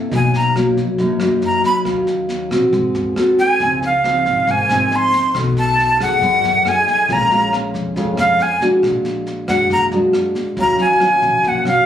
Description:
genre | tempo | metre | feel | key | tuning
bossa nova | 138 BPM | 4/4 | straight | Eb minor | A4 = 440 Hz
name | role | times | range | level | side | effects
nylon-string guitar | accompaniment | 0.0-11.9 s | F2 to A4 | -18 LUFS | equal | none
upright bass | bass | 0.1-11.9 s | Ab1 to F#2 | -24 LUFS | left 1 dB | none
vintage brush drum kit | drums | 0.1-11.8 s | kick drum, rim click, snare drum | -30 LUFS | equal | none
breathy bright jazz flute | melody | 0.2-11.9 s | F5 to C6 | -15 LUFS | equal | none
room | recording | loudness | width
light reverb | recorded on a phone in the room, club reverb, compression | -14 LUFS | side -10 dB against mid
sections
0.0-11.9 A section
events
flute solo 0.0-11.9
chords
0.1 Bmaj7; 1.9 Ebm9; 2.7 Ab7b9; 3.6 Dbmaj9; 5.3 B6; 7.1 Bbm7; 8.8 Bbaug7; 10.6 Ebm9

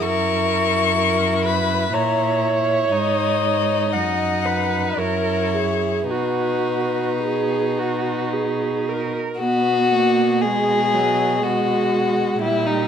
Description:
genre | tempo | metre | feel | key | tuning
classical, slow romantic movement for string quartet | 53-64 BPM | 3/4 | rubato | B major | A4 = 438 Hz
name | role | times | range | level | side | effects
warm violin | melody | 0.0-12.9 s | B4 to C#6 | -25 LUFS | left 11 dB | none
warm violin | second line | 0.0-12.9 s | D#4 to G#4 | -22 LUFS | left 3 dB | none
warm viola | accompaniment | 0.0-12.9 s | F#3 to D#5 | -23 LUFS | right 4 dB | none
rich cello | bass | 0.0-12.9 s | F#2 to B2 | -26 LUFS | right 5 dB | none
room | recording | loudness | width
light reverb | close, detailed microphones | -18 LUFS | side -8 dB against mid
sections
0.0-9.4 A section; 9.4-12.9 A section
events
none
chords
0.0 F#7; 2.9 G#5; 3.9 B/F#; 5.0 F#7; 6.1 B

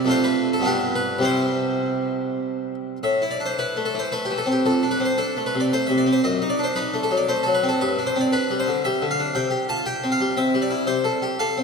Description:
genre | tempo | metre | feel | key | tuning
classical, baroque-style suite movement for harpsichord | 98-119 BPM | 3/4 | rubato | C major | A4 = 439 Hz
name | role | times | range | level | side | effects
harpsichord | solo | 0.0-11.6 s | F2 to A5 | -20 LUFS | equal | none
room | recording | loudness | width
wet cathedral reverb, RT60 4.9 s | none | -20 LUFS | side -5 dB against mid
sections
0.0-3.0 A section; 3.0-11.6 A section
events
none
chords
0.1 Dm/F; 0.7 G7; 1.2 C; 3.0 Am; 4.6 D7(no3); 6.2 F#dim7; 7.8 G5; 9.4 C; 10.9 F/C

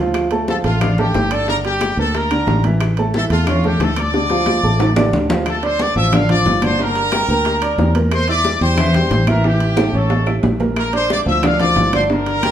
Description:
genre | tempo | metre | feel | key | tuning
latin, salsa | 181 BPM | 4/4 | straight | D harmonic minor, D minor from 5.5 s | A4 = 440 Hz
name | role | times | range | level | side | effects
warm upright piano | accompaniment | 0.0-12.5 s | D3 to E6 | -20 LUFS | right 2 dB | none
fingered electric bass | bass | 0.0-12.5 s | G1 to E2 | -19 LUFS | equal | none
bongos | percussion | 0.1-12.5 s | none | -26 LUFS | left 4 dB | none
congas | percussion | 0.1-12.5 s | none | -23 LUFS | left 2 dB | none
timbales | percussion | 0.1-12.5 s | none | -25 LUFS | right 5 dB | none
claves | percussion | 0.2-12.5 s | none | -33 LUFS | left 7 dB | none
brilliant trumpet section | melody | 0.5-12.5 s | F4 to E6 | -20 LUFS | left 1 dB | none
room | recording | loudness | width
wet large studio reverb, RT60 1.1 s | band playing live in one room | -14 LUFS | side -10 dB against mid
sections
0.0-5.5 A section; 5.5-12.5 B section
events
drum fill 4.1-5.5, 9.8-10.8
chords
0.1 Dm; 1.5 Gm; 2.8 A; 4.1 Dm; 5.5 Dm7; 6.8 Gm; 8.1 Edim; 9.4 A5; 10.1 A; 10.8 Bb

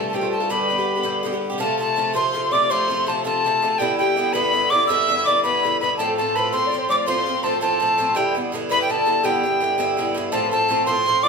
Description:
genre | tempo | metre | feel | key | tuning
celtic folk, Celtic jig | 110 BPM (dotted quarters) | 6/8 | straight | unclear | A4 = 440 Hz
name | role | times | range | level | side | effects
tin whistle | melody | 0.0-11.3 s | G5 to E6 | -20 LUFS | equal | none
bowl-back mandolin | second line | 0.0-1.2, 6.0-11.3 s | G4 to D5 | -28 LUFS | right 5 dB | none
dark fiddle | second line | 0.0-11.3 s | G4 to E5 | -26 LUFS | left 5 dB | none
Irish bouzouki | accompaniment | 0.0-11.3 s | G2 to G4 | -24 LUFS | right 2 dB | none
mellow accordion | drone | 0.0-1.7 s | G2 to G3 | -31 LUFS | left 1 dB | none
room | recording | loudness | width
wet large studio reverb, RT60 0.9 s | band playing live in one room | -18 LUFS | side -5 dB against mid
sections
0.0-1.6 A section; 1.6-10.3 B section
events
none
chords
0.0 F; 0.5 G; 1.6 F; 3.8 G6; 6.0 F; 8.2 G6; 10.3 F

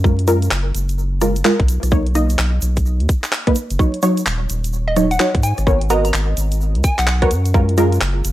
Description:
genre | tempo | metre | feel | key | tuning
UK garage, two-step garage | 128 BPM | 4/4 | swing 63% on 16ths | unclear | A4 = 439 Hz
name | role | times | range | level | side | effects
punchy chord stab | stabs | 0.0-8.0 s | Gb3 to D#5 | -19 LUFS | equal | chorus, analog delay
saturated sub bass | bass | 0.0-8.3 s | Eb1 to Ab2 | -18 LUFS | equal | none
electronic kick drum | drums | 0.0-7.7 s | none | -16 LUFS | equal | none
egg shaker | percussion | 0.0-8.3 s | none | -32 LUFS | right 4 dB | none
garage drum kit | drums | 0.2-8.3 s | handclaps, hi-hat, rim click | -23 LUFS | equal | none
hollow square pluck | melody | 4.9-7.2 s | Eb5 to Bb5 | -24 LUFS | equal | chorus, cassette tape, analog delay
room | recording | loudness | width
digital ambience | dry, gritty hardware recording, vinyl crackle | -15 LUFS | side -14 dB against mid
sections
0.0-8.3 A section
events
filter sweep on synth stab 0.0-8.3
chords
0.0 Gbmaj9; 1.7 Bmaj7; 3.8 Ebm7; 5.4 Abm11; 7.3 Gbmaj9

